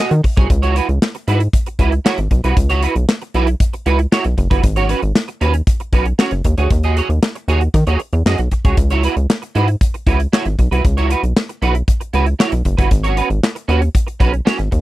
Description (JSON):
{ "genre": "early-eighties boogie funk", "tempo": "116 BPM", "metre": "4/4", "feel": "straight", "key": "C# minor", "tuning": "A4 = 440 Hz", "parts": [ { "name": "electric guitar at the edge of break-up", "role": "riff", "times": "0.0-14.8 s", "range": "C#4 to D#5", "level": "-19 LUFS", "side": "right 5 dB", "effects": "ensemble chorus" }, { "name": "modern studio drum kit", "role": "drums", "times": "0.0-14.8 s", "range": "handclaps, hi-hat, kick drum, snare drum", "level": "-16 LUFS", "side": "equal", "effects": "none" }, { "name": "rubbery square bass", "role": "bass", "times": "0.1-14.8 s", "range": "F#1 to D#3", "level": "-16 LUFS", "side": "equal", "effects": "none" } ], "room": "little or no reverb", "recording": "dry, close 1970s-style studio recording", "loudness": "-14 LUFS", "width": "side -16 dB against mid", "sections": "0.5-14.8 A section", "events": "none", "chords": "0.5 C#m7; 4.6 G#m7; 6.4 D#m7; 8.8 C#m7; 12.9 G#m7" }